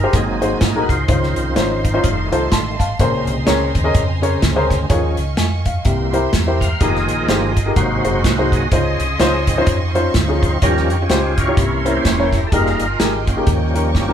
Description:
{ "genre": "uptempo gospel", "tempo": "126 BPM", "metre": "4/4", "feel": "swing 59% on 8ths", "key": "Ab major", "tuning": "A4 = 440 Hz", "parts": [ { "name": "dark baby grand piano", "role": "accompaniment", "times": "0.0-14.1 s", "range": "Ab2 to C6", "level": "-20 LUFS", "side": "left 2 dB", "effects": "none" }, { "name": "percussive tonewheel organ", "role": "sustained chords", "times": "0.0-14.1 s", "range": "C3 to F5", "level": "-22 LUFS", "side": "right 1 dB", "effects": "slow rotary speaker, overdrive, chorus vibrato" }, { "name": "warm studio string section", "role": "sustained chords", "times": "0.0-14.1 s", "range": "Db4 to Db6", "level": "-29 LUFS", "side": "right 3 dB", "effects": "none" }, { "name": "deep dub fingered electric bass", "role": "bass", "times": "0.0-14.1 s", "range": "E1 to F2", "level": "-21 LUFS", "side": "equal", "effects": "none" }, { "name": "natural country drum kit", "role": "drums", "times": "0.1-14.1 s", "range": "hi-hat, kick drum, snare drum, toms", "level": "-19 LUFS", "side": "equal", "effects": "none" } ], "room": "light reverb", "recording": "band playing live in one room", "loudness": "-14 LUFS", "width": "side -9 dB against mid", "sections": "0.0-14.1 A section", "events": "tonewheel organ solo 0.0-14.1; grand piano fill 2.3-3.0; drum fill 13.9", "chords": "0.1 Ab7; 1.1 Dbmaj9; 2.0 F7; 3.0 Bbm9; 4.9 Eb9sus4; 5.9 C7; 6.8 Fm11; 7.8 Ab7; 8.7 Dbmaj9; 10.6 Eb9; 11.6 C7b9; 12.5 Fm11; 13.5 Eb7", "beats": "0.13 0.61 | 1.09 1.56 2.04 2.52 | 2.99 3.47 3.95 4.42 | 4.90 5.38 5.86 6.33 | 6.81 7.29 7.76 8.24 | 8.72 9.20 9.67 10.15 | 10.62 11.10 11.57 12.05 | 12.52 13.00 13.47 13.95" }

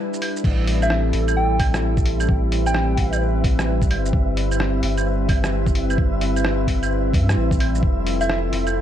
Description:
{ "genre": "future garage", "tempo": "130 BPM", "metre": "4/4", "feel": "swing 63% on 16ths", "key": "unclear", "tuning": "A4 = 445 Hz", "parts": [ { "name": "warbly tape-like pad", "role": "sustained chords", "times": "0.0-8.8 s", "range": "F3 to B4", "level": "-24 LUFS", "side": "left 1 dB", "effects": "chorus, built-in reverb, sidechain pumping" }, { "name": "lo-fi sampler-style drum kit", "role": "drums", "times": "0.1-8.7 s", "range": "claves, crash cymbal, hi-hat, rim click, shaker", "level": "-27 LUFS", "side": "right 2 dB", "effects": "none" }, { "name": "warm sub bass", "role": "bass", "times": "0.4-8.8 s", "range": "F1 to G2", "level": "-22 LUFS", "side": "equal", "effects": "sidechain pumping" }, { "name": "electronic kick drum", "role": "drums", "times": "0.4-7.9 s", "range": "none", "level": "-20 LUFS", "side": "equal", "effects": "none" }, { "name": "flickering grainy texture", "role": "texture", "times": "1.2-8.8 s", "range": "E5", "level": "-33 LUFS", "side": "right 3 dB", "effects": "built-in reverb" }, { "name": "soft struck synth lead", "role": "melody", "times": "0.8-3.1, 8.2-8.4 s", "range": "E5 to G5", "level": "-27 LUFS", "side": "equal", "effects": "chorus, tape echo" } ], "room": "light reverb, digital ambience", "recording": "none", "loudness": "-18 LUFS", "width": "side -10 dB against mid", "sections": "0.0-8.8 A section", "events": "break 0.0-0.4", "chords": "0.4 Cmaj7; 7.8 Fmaj7", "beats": "| 0.44 0.91 1.37 1.83 | 2.29 2.75 3.21 3.67 | 4.14 4.60 5.06 5.52 | 5.98 6.44 6.91 7.37 | 7.83 8.29 8.75" }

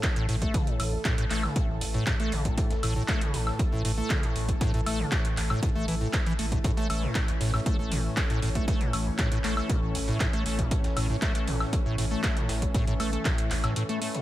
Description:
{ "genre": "acid house", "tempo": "118 BPM", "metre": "4/4", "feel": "straight", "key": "A major", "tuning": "A4 = 440 Hz", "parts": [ { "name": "lush unison pad", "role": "sustained chords", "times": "0.0-14.2 s", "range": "E3 to A4", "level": "-36 LUFS", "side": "equal", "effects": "chorus, sidechain pumping" }, { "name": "acid bass, square", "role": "riff", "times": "0.0-14.2 s", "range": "A1 to A3", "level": "-30 LUFS", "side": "equal", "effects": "tube saturation, analog chorus, cassette tape, ping-pong delay" }, { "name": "booming analog drum machine", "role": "drums", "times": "0.0-14.2 s", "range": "handclaps, hi-hat, woodblock", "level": "-33 LUFS", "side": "equal", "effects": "none" }, { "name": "dusty soul sampler-style drum kit", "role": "drums", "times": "0.0-14.2 s", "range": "hi-hat, snare drum", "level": "-43 LUFS", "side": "left 1 dB", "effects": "none" }, { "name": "electronic kick drum", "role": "drums", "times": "0.0-13.4 s", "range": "none", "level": "-28 LUFS", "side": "equal", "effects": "overdrive" }, { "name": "saturated sub bass", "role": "bass", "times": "0.3-13.7 s", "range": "A1", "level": "-32 LUFS", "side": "equal", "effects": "sidechain pumping" } ], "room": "light reverb", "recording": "none", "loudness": "-25 LUFS", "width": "side -14 dB against mid", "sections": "0.0-14.2 A section", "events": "break 13.8-14.2", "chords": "0.0 A5", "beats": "0.03 | 0.54 1.05 1.56 2.07 | 2.58 3.08 3.59 4.10 | 4.61 5.12 5.63 6.13 | 6.64 7.15 7.66 8.17 | 8.68 9.19 9.70 10.20 | 10.71 11.22 11.73 12.24 | 12.75 13.25 13.76" }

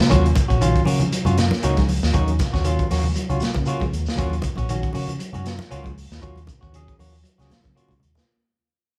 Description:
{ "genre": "afrobeat", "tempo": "117 BPM", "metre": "4/4", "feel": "swing 55% on 16ths", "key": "Eb minor", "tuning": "A4 = 440 Hz", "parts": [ { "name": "semi-hollow electric guitar", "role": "arpeggios", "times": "0.0-8.1 s", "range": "Eb3 to Ab3", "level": "-31 LUFS", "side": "equal", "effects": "none" }, { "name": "crunchy breakbeat drum kit", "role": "drums", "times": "0.0-8.3 s", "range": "hi-hat, kick drum, snare drum", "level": "-26 LUFS", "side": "equal", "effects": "none" }, { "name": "barky tine electric piano", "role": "accompaniment", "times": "0.1-7.9 s", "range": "Gb3 to Ab4", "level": "-31 LUFS", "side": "equal", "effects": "overdrive" }, { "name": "semi-hollow electric guitar", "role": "stabs", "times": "0.1-7.9 s", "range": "Bb3 to Gb4", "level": "-33 LUFS", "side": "equal", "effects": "none" }, { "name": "fingered electric bass", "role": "bass", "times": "0.1-8.2 s", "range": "Bb1 to Db3", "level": "-26 LUFS", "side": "equal", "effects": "none" }, { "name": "congas", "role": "percussion", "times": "0.1-8.3 s", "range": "none", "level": "-29 LUFS", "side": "equal", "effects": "none" }, { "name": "shekere", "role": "percussion", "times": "0.1-8.3 s", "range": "none", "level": "-35 LUFS", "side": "equal", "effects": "none" } ], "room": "moderate large studio reverb, RT60 1.0 s", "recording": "band playing live in one room", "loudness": "-21 LUFS", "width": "mono", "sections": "0.1-8.3 A section", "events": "fade-out 0.1-8.3; drum fill 7.5-8.3", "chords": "0.1 Ebm7", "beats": "| 0.10 0.61 1.12 1.63 | 2.14 2.65 3.16 3.67 | 4.18 4.69 5.21 5.72 | 6.23 6.74 7.25 7.76" }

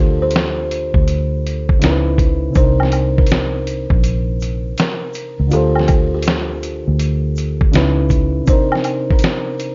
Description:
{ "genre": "lo-fi hip hop", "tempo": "81 BPM", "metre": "4/4", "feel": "swing 66% on 16ths", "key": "C dorian", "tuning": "A4 = 443 Hz", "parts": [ { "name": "buzzing kalimba", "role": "melody", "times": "0.0-9.4 s", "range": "G4 to C5", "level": "-26 LUFS", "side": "equal", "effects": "low-pass filter" }, { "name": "reed electric piano", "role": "accompaniment", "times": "0.0-9.7 s", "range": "C3 to C5", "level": "-24 LUFS", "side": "equal", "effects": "low-pass filter" }, { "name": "vintage muted fingered electric bass", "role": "bass", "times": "0.0-8.4 s", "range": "Bb1 to D2", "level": "-21 LUFS", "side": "equal", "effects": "none" }, { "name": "lo-fi sampler-style drum kit", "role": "drums", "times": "0.3-9.7 s", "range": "hi-hat, kick drum, snare drum", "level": "-19 LUFS", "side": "equal", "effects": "vintage 12-bit sampler grit" }, { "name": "egg shaker and woodblock", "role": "percussion", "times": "2.5-9.7 s", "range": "none", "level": "-27 LUFS", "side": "equal", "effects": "none" } ], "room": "light reverb", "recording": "dark, warm production, nothing above 7.5 kHz", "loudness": "-16 LUFS", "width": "mono", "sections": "0.0-9.7 A section", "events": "none", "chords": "0.0 G9sus4/D; 1.8 Dbm9; 2.6 Cm9; 5.5 G9sus4/D; 7.7 Dbm9; 8.5 Cm9", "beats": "0.33 1.07 1.81 | 2.55 3.29 4.04 4.78 | 5.52 6.26 7.00 7.74 | 8.48 9.22" }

